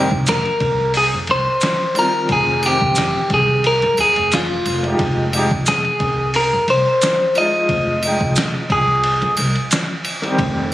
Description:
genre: trip hop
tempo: 89 BPM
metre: 4/4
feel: swing 54% on 16ths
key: F minor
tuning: A4 = 441 Hz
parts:
  - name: bright upright piano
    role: accompaniment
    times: 0.0-10.7 s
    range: Eb3 to G5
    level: -23 LUFS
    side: equal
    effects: tremolo, tape echo
  - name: upright bass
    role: bass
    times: 0.0-10.7 s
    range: F1 to F2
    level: -23 LUFS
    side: equal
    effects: none
  - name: trip hop sampler-style drum kit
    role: drums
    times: 0.1-10.6 s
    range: hi-hat, kick drum, ride cymbal, snare drum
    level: -22 LUFS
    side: equal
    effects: none
  - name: clean electric guitar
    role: melody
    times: 0.3-9.3 s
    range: F4 to Eb5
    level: -17 LUFS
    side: equal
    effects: phaser, dub echo
  - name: maracas and triangle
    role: percussion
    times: 0.3-10.2 s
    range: none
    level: -27 LUFS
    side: right 1 dB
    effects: none
room: light reverb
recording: recorded on a phone in the room, studio reverb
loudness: -14 LUFS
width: side -14 dB against mid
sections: 0.0-10.7 A section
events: none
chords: 0.0 Fm9

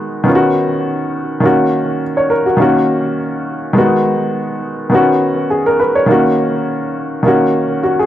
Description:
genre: afrobeats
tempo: 103 BPM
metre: 4/4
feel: swing 55% on 16ths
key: unclear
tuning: A4 = 440 Hz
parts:
  - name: warm baby grand piano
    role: solo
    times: 0.0-8.1 s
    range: D#3 to C#5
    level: -12 LUFS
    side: equal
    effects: analog delay
room: light reverb, studio reverb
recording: dry, gritty hardware recording, transformer saturation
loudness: -12 LUFS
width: side -12 dB against mid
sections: 0.0-8.1 A section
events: none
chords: 0.3 C#9sus4; 1.4 D#m7; 3.8 G#m7; 4.9 C#9sus4; 6.1 D#m7

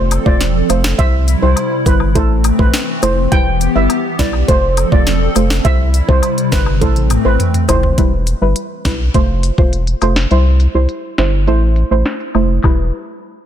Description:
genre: dancehall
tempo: 103 BPM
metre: 4/4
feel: straight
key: E phrygian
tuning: A4 = 442 Hz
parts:
  - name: deep mellow chord stab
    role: accompaniment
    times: 0.0-12.9 s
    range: G3 to C5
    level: -19 LUFS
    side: right 2 dB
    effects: chorus
  - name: hollow soft pad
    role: sustained chords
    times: 0.0-8.0 s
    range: C3 to A4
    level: -20 LUFS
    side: left 2 dB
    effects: ensemble chorus, sidechain pumping
  - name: round analog bass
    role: bass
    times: 0.0-12.9 s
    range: E1 to C2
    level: -15 LUFS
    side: equal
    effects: none
  - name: afro-pop drum kit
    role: drums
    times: 0.1-12.8 s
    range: handclaps, hi-hat, kick drum, snare drum, toms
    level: -16 LUFS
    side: equal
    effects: none
  - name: cabasa and woodblock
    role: percussion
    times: 0.1-12.9 s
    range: none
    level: -26 LUFS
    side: left 9 dB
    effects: none
  - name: steel pan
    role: melody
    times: 0.3-7.8 s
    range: A4 to G5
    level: -19 LUFS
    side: right 2 dB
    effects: ping-pong delay
room: digital ambience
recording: dense, heavily limited modern master, low-pass filter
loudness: -11 LUFS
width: side -10 dB against mid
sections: 0.0-8.0 A section; 8.0-12.6 B section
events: drum fill 6.8-8.0; filter sweep 8.0-12.6; kick muted 10.3-12.6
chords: 0.0 F; 1.0 C; 2.2 Am; 3.3 Em; 4.5 F; 5.6 C; 6.8 Am; 8.0 Em; 9.1 F; 10.3 C; 11.5 Am; 12.6 Em

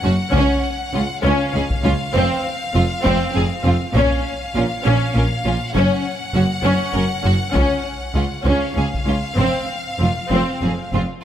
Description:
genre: cinematic, epic orchestral film score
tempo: 66 BPM (dotted quarters)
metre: 6/8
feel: straight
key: unclear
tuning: A4 = 442 Hz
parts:
  - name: bright symphonic violin section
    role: melody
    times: 0.0-11.1 s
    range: F5 to Gb5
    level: -27 LUFS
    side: left 2 dB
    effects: none
  - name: clear symphonic viola section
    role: accompaniment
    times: 0.0-11.0 s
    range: C4 to Db4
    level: -24 LUFS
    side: equal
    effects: none
  - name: clear symphonic cello section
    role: bass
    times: 0.0-11.0 s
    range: Db2 to Bb2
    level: -22 LUFS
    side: equal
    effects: none
  - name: clear symphonic double bass section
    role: bass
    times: 0.0-11.0 s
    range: F1 to Db2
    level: -22 LUFS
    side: right 2 dB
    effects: none
  - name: rich studio violin section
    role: second line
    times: 0.1-11.0 s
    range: C4 to Bb4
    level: -24 LUFS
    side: left 1 dB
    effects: none
  - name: taiko ensemble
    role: drums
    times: 0.3-9.2 s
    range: none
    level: -24 LUFS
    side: equal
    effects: none
room: moderate scoring stage reverb, RT60 2.0 s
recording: none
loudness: -16 LUFS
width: side -10 dB against mid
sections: 0.0-11.2 A section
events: build-up 0.0-11.2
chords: 0.3 Db; 2.2 F5; 4.0 Bbm; 5.8 Gb5; 7.6 Db; 9.4 F5

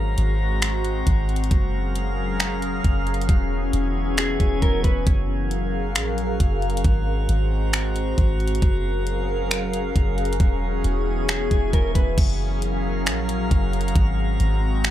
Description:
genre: hip hop, atmospheric cloud-rap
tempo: 135 BPM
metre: 4/4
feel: half-time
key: Gb lydian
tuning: A4 = 440 Hz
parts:
  - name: warbly tape-like pad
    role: sustained chords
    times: 0.0-14.9 s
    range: E3 to F5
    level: -27 LUFS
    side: left 1 dB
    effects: chorus, built-in reverb, phaser, sidechain pumping
  - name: soft 808-style bass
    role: bass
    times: 0.0-14.9 s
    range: E1 to Bb1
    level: -24 LUFS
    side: equal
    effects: none
  - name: drifting glass-harmonics texture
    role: texture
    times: 0.0-14.9 s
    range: E4 to Bb5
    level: -32 LUFS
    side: equal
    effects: chorus, built-in reverb
  - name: smooth R&B drum kit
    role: drums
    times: 0.2-14.9 s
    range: crash cymbal, finger snaps, hi-hat, kick drum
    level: -21 LUFS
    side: equal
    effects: none
  - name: mellow electric guitar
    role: melody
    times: 4.2-5.1, 11.3-12.2 s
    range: G#4 to B4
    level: -27 LUFS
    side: left 2 dB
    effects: lush chorus, slapback echo, plate reverb
room: little or no reverb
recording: none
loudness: -20 LUFS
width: side -12 dB against mid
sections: 0.0-12.2 A section; 12.2-14.9 B section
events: none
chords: 0.0 Ab9; 1.5 Gbmaj7; 3.3 E6; 5.1 Gbmaj7; 6.8 Ab9; 8.6 Gbmaj7; 10.4 E6; 12.2 Gbmaj7; 14.0 Ab9

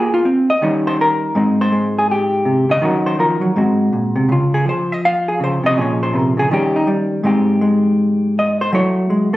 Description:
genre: solo jazz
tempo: 163 BPM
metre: 4/4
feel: swing 64% on 8ths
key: Ab major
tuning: A4 = 442 Hz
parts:
  - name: hollow-body jazz guitar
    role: solo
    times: 0.0-9.4 s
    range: Ab2 to F5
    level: -14 LUFS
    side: equal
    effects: none
room: light reverb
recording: recorded on a phone in the room, studio reverb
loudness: -14 LUFS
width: side -16 dB against mid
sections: 0.0-1.3 A section; 1.3-9.4 A section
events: hollow-body jazz guitar solo 0.0-9.4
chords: 0.0 Bb5; 0.6 Eb7; 1.3 Abmaj7; 2.8 Ebm7; 3.6 Ab7; 4.3 Dbmaj7; 5.8 Bbm7; 6.5 Eb7; 7.2 Abmaj7; 8.7 Gbm7

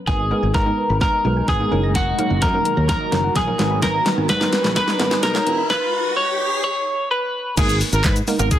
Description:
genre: dance-pop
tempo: 128 BPM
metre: 4/4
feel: straight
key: G# minor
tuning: A4 = 440 Hz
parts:
  - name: twelve-string electric guitar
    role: melody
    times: 0.1-7.5 s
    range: F#4 to C#5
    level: -20 LUFS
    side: equal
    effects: plate reverb, ping-pong delay
  - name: hollow square pluck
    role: accompaniment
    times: 0.1-8.6 s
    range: F#3 to C#5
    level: -25 LUFS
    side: right 3 dB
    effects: chorus, sidechain pumping, plate reverb
  - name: granular cloud pad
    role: sustained chords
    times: 0.8-8.6 s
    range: B2 to A#4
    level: -30 LUFS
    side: left 1 dB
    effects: built-in reverb, sidechain pumping, plate reverb
  - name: thumb-piano-like synth pluck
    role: arpeggios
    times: 0.1-5.6 s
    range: A#4 to A#6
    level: -33 LUFS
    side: left 1 dB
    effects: none
  - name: fingered electric bass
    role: bass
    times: 0.1-8.6 s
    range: E1 to G#2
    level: -22 LUFS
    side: equal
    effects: sidechain pumping
  - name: pop drum kit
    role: drums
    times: 0.1-8.6 s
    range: crash cymbal, handclaps, hi-hat, kick drum, shaker, snare drum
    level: -21 LUFS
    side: equal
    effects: soft clipping on snare
  - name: riser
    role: sound effects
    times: 3.0-6.6 s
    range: none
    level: -30 LUFS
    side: equal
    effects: none
  - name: clear horn section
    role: melody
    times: 7.6-8.6 s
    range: G#4 to B4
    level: -23 LUFS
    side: right 2 dB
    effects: sidechain pumping, plate reverb
room: moderate studio reverb, RT60 0.6 s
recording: dense, heavily limited modern master, high-pass filter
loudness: -17 LUFS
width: side -11 dB against mid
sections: 0.1-7.6 A section; 7.6-8.6 B section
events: build-up 0.1-7.6; drum fill 0.1-5.7; filter sweep 0.1-7.6; riser 3.0-7.6; stop 5.7-7.6; drop 7.6-8.6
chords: 0.1 G#madd9; 1.7 D#m/F#; 3.6 G#madd9; 5.7 N.C.; 7.6 G#madd9

